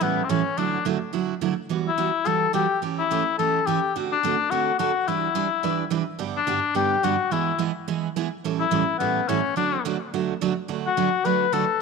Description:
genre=country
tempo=214 BPM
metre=4/4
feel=swing 62% on 8ths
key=unclear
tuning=A4 = 440 Hz
part: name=warm cor anglais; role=melody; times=0.0-11.8 s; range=B3 to B4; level=-23 LUFS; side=left 8 dB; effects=tape echo
part: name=picked steel-string acoustic guitar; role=accompaniment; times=0.0-11.6 s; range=G2 to B4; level=-25 LUFS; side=right 11 dB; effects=none
room=moderate echo chamber reverb, RT60 1.8 s, studio reverb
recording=1960s-style stereo with parts hard left and right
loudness=-21 LUFS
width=side -4 dB against mid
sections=0.0-11.8 A section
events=none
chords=0.0 A7; 0.6 Dadd9; 1.7 Emadd9; 2.8 A7/E; 3.9 D7; 5.1 Em7; 6.2 G; 7.3 E; 8.4 A7; 9.6 D

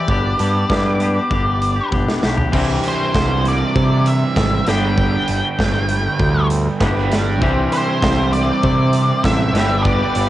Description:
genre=indie rock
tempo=98 BPM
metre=4/4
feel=straight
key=unclear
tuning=A4 = 441 Hz
part: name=octave-fuzz lead guitar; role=melody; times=0.0-10.3 s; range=C5 to G5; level=-22 LUFS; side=equal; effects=distortion, cassette tape, analog delay
part: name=twangy electric guitar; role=riff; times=0.0-10.3 s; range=E3 to G4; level=-24 LUFS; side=left 4 dB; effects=cassette tape
part: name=growling picked electric bass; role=bass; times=0.1-10.3 s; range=G1 to C3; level=-19 LUFS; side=equal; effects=overdrive
part: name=big rock drum kit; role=drums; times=0.1-10.3 s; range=crash cymbal, hi-hat, kick drum, snare drum, toms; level=-21 LUFS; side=equal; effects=cassette tape
part: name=overdriven electric guitar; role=riff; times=2.5-10.3 s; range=G2 to G4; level=-21 LUFS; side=right 4 dB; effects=lush chorus, cassette tape
part: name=analog string pad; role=sustained chords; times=7.4-10.3 s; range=B4 to D6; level=-27 LUFS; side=right 1 dB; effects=ensemble chorus, cassette tape
room=light reverb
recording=home recording on cassette, nothing above 10.8 kHz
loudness=-14 LUFS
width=side -14 dB against mid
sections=0.0-2.5 A section; 2.5-10.3 B section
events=drum fill 1.9-2.5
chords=0.1 G; 2.5 Cadd9; 4.7 G; 7.4 Cadd9; 9.5 G

